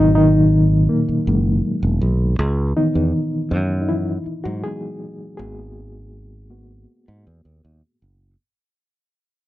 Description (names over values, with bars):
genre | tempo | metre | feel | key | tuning
lush 1970s-style soul | 80 BPM | 4/4 | straight | G# minor | A4 = 440 Hz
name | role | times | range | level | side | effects
reed electric piano | accompaniment | 0.0-8.4 s | A#2 to G#4 | -18 LUFS | equal | fast tremolo
fingered electric bass | bass | 0.0-8.3 s | E1 to G#2 | -20 LUFS | equal | none
room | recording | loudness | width
little or no reverb | dry, close 1970s-style studio recording | -16 LUFS | side -15 dB against mid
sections
0.0-8.4 A section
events
fade-out 0.0-8.4; reed electric piano solo 0.0-8.4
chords
0.0 G#m9; 2.4 C#m7 (rootless); 5.4 G#m9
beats
0.15 0.90 1.65 | 2.39 3.14 3.89 4.64 | 5.39 6.14 6.88 7.63